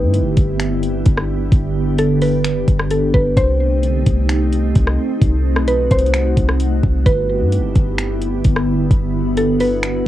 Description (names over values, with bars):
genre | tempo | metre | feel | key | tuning
hip hop, atmospheric cloud-rap | 130 BPM | 4/4 | half-time | G major | A4 = 440 Hz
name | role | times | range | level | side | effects
mallet-like synth pluck | melody | 0.0-10.1 s | A4 to C5 | -20 LUFS | equal | chorus, low-pass filter, cassette tape, analog delay
glassy FM pad | sustained chords | 0.0-10.1 s | D3 to G4 | -20 LUFS | equal | ensemble chorus, built-in reverb, sidechain pumping, cassette tape
soft 808-style bass | bass | 0.0-10.0 s | G1 to G2 | -19 LUFS | equal | none
smooth R&B drum kit | drums | 0.1-9.9 s | finger snaps, hi-hat, kick drum, rim click | -15 LUFS | equal | cassette tape
room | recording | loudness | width
light reverb | home recording on cassette | -14 LUFS | side -13 dB against mid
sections
0.0-10.1 A section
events
none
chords
0.0 G6; 3.4 Cm6; 7.1 G6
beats
0.14 0.60 1.06 | 1.52 1.99 2.45 2.91 | 3.37 3.83 4.29 4.75 | 5.21 5.68 6.14 6.60 | 7.06 7.52 7.99 8.45 | 8.91 9.37 9.83